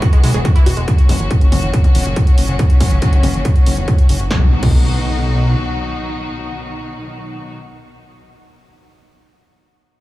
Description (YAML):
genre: uplifting trance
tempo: 140 BPM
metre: 4/4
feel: straight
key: B major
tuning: A4 = 440 Hz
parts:
  - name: rich chamber string section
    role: sustained chords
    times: 0.0-7.6 s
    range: A#2 to F#4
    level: -24 LUFS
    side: left 1 dB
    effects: sidechain pumping
  - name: wide unison pluck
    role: arpeggios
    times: 0.0-0.8 s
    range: G#3 to G#4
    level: -27 LUFS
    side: right 2 dB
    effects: sidechain pumping, digital delay
  - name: electronic kick drum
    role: drums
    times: 0.0-4.8 s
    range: none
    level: -12 LUFS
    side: equal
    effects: none
  - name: punchy analog drum machine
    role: drums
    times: 0.0-4.8 s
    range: crash cymbal, hi-hat, snare drum, toms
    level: -26 LUFS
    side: left 1 dB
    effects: overdrive
  - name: fat analog bass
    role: bass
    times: 0.2-5.6 s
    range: E1 to B1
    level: -17 LUFS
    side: equal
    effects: tube saturation, sidechain pumping
  - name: impact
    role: sound effects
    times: 4.4-7.6 s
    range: none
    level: -23 LUFS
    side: equal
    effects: none
room: digital ambience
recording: small room ambience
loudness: -12 LUFS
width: side -17 dB against mid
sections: 0.0-4.3 A section; 4.3-7.7 B section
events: none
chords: 0.0 Eadd9; 0.9 F#; 4.3 B